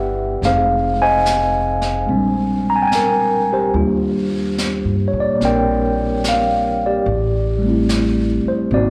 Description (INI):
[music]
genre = jazz ballad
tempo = 72 BPM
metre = 4/4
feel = swing 68% on 8ths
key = unclear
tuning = A4 = 441 Hz
[part]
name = mellow tine electric piano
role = accompaniment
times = 0.0-8.9 s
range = Gb3 to Bb5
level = -18 LUFS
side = equal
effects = slapback echo
[part]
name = upright bass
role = bass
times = 0.0-8.9 s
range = F1 to Bb2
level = -25 LUFS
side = equal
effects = none
[part]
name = jazz brush drum kit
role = drums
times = 0.4-8.9 s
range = brushed snare drum, hi-hat, snare drum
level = -30 LUFS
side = equal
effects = none
[sound]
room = moderate club reverb, RT60 0.5 s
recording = live gig heard through the venue's PA, club reverb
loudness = -18 LUFS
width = mono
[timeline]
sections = 0.0-8.9 A section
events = none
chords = 0.4 Fm7; 2.1 Bb13; 3.7 Ebmaj7; 7.1 Am7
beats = | 0.42 1.24 2.07 2.91 | 3.74 4.57 5.40 6.23 | 7.06 7.89 8.71